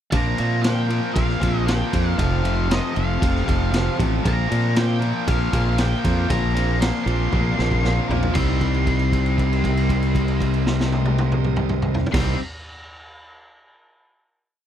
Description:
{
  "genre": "classic rock",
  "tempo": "117 BPM",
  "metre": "4/4",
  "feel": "straight",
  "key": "C minor",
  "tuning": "A4 = 440 Hz",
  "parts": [
    { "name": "octave-fuzz lead guitar", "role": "melody", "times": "0.1-12.3 s", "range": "Eb5 to C6", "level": "-29 LUFS", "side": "right 1 dB", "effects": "distortion, slapback echo" },
    { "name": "picked acoustic archtop guitar", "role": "accompaniment", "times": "0.1-12.4 s", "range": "F2 to A4", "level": "-34 LUFS", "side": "right 10 dB", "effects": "none" },
    { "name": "crunchy overdriven guitar", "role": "riff", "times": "0.1-12.4 s", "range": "F2 to C4", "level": "-26 LUFS", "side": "left 12 dB", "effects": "none" },
    { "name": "tight distorted guitar", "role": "riff", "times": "0.1-12.4 s", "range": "F2 to C4", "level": "-28 LUFS", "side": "right 12 dB", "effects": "distortion" },
    { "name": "modern bright fingered electric bass", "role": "bass", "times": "0.1-12.3 s", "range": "F1 to Bb2", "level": "-22 LUFS", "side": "equal", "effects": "none" },
    { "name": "raw garage drum kit", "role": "drums", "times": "0.1-12.3 s", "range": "crash cymbal, kick drum, ride cymbal, snare drum, toms", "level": "-25 LUFS", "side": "equal", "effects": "none" },
    { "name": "bright tonewheel organ", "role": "sustained chords", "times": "4.0-12.4 s", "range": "B3 to E5", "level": "-36 LUFS", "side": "equal", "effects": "none" }
  ],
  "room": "little or no reverb",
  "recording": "dry, close 1970s-style studio recording",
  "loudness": "-18 LUFS",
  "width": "side -10 dB against mid",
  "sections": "0.1-8.4 pre-chorus; 8.4-12.4 final chord",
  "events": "drum fill 7.3-8.4; held note 8.4-12.1",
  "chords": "0.1 Bbadd9; 2.2 F; 4.3 Bbadd9; 8.4 Cm7",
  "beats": "| 0.13 0.64 1.16 1.68 | 2.19 2.71 3.22 3.74 | 4.26 4.77 5.29 5.80 | 6.31 6.83 7.34 7.85 | 8.36 8.87 9.38 9.89 | 10.40 10.91 11.42 11.93"
}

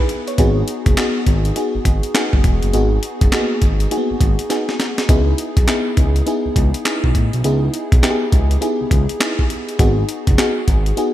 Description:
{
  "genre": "R&B, new jack swing",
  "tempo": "102 BPM",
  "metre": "4/4",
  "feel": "swing 63% on 16ths",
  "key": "C# minor",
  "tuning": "A4 = 439 Hz",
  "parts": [
    { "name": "FM electric piano with soft pad layer", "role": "accompaniment", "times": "0.0-11.1 s", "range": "A#3 to C#5", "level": "-20 LUFS", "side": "left 1 dB", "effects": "chorus" },
    { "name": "breakbeat sampler-style drum kit", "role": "drums", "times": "0.1-11.1 s", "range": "handclaps, hi-hat, kick drum, snare drum", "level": "-17 LUFS", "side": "equal", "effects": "gated reverb" },
    { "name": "smooth synth bass", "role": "bass", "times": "0.4-10.9 s", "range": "E1 to C#2", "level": "-18 LUFS", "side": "equal", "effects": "none" }
  ],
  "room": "light reverb",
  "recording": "bright 1980s-style digital production",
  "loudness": "-14 LUFS",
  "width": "side -13 dB against mid",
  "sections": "0.0-11.1 A section",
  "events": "drum fill 4.5-5.1",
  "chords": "0.4 G#m7; 5.1 C#m7; 9.8 G#m7",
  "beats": "| 0.38 0.97 1.56 2.15 | 2.74 3.32 3.91 4.50 | 5.09 5.68 6.26 6.85 | 7.44 8.03 8.62 9.21 | 9.79 10.38 10.97"
}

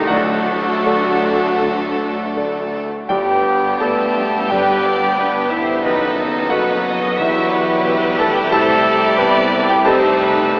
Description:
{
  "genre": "classical, romantic movement for piano and orchestra",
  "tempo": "78-91 BPM",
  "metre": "4/4",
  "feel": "rubato",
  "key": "G major",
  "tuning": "A4 = 437 Hz",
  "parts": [
    { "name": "clear chamber violin section", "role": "melody", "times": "0.0-10.6 s", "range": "F#4 to A4", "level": "-26 LUFS", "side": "equal", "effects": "none" },
    { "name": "warm grand piano", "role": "melody", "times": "0.0-10.6 s", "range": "E1 to B5", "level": "-18 LUFS", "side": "equal", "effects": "none" },
    { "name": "clear chamber violin section", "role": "second line", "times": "0.0-10.6 s", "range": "A3 to E4", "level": "-24 LUFS", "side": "equal", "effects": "none" },
    { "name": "silver concert flute", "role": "second line", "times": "0.0-10.6 s", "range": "D#5 to B5", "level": "-24 LUFS", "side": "equal", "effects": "none" },
    { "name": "clear studio viola section", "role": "accompaniment", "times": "0.0-10.6 s", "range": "F#4 to E5", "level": "-23 LUFS", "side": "equal", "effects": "none" },
    { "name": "bright trombone section", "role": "sustained chords", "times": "0.0-10.6 s", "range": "D3 to E4", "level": "-24 LUFS", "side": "equal", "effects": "none" },
    { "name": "mellow French horn section", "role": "sustained chords", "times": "0.0-10.6 s", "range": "D#3 to B3", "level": "-26 LUFS", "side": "equal", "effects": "none" },
    { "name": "mellow trumpet", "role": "stabs", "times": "0.0-10.6 s", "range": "Eb4 to B4", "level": "-21 LUFS", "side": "equal", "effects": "none" },
    { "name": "clear chamber double bass section", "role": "bass", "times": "0.0-10.6 s", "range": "E1 to D2", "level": "-30 LUFS", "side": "equal", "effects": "none" },
    { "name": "warm chamber cello section", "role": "bass", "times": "0.0-10.6 s", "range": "C2 to G2", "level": "-31 LUFS", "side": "equal", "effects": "none" },
    { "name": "timpani", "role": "percussion", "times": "0.1-1.2 s", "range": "none", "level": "barely audible", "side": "none", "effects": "none" }
  ],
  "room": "wet cathedral reverb, RT60 5.2 s",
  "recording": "in a vast, echoing space, AM radio sound",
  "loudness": "-13 LUFS",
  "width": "side -34 dB against mid",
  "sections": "0.0-10.6 A section",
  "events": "none",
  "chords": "0.1 D; 3.1 G; 5.8 B7/F#; 7.2 Em; 8.5 Cmaj7; 9.9 Am7b5/C",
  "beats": "| 0.09 0.84 1.59 2.35 | 3.10 3.82 4.51 5.18 | 5.84 6.51 7.18 7.85 | 8.51 9.18 9.86 10.58"
}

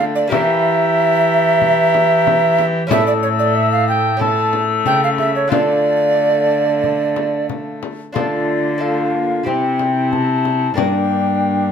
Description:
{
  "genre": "classical, renaissance-style consort dance",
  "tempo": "92 BPM",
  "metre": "4/4",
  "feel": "straight",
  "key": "D harmonic minor, D minor from 8.2 s",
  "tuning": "A4 = 440 Hz",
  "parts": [
    { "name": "baroque flute", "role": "melody", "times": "0.0-11.7 s", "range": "D5 to E6", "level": "-22 LUFS", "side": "left 8 dB", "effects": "none" },
    { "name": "mellow tenor recorder", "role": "second line", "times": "0.0-11.7 s", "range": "D4 to A5", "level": "-17 LUFS", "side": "right 2 dB", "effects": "none" },
    { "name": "lute", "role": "accompaniment", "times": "0.0-11.7 s", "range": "G2 to D5", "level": "-25 LUFS", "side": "right 2 dB", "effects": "none" },
    { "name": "rich viola", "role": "accompaniment", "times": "0.0-11.7 s", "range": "A3 to G4", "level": "-23 LUFS", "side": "left 4 dB", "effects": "none" },
    { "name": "dark cello", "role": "bass", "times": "0.0-11.7 s", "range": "G2 to E3", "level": "-21 LUFS", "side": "right 1 dB", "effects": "none" },
    { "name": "frame drum", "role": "percussion", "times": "0.3-11.1 s", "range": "none", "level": "-24 LUFS", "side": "left 8 dB", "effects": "none" }
  ],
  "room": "moderate stone room reverb, RT60 1.0 s",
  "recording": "none",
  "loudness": "-14 LUFS",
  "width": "side -7 dB against mid",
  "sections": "0.0-8.2 A section; 8.2-11.7 B section",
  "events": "none",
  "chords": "0.3 Edim; 2.9 A; 5.5 Dm; 9.5 C; 10.8 Gm",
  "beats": "| 0.32 0.97 1.61 2.26 | 2.91 3.56 4.21 4.86 | 5.51 6.18 6.84 7.50 | 8.16 8.81 9.47 10.12 | 10.77 11.42"
}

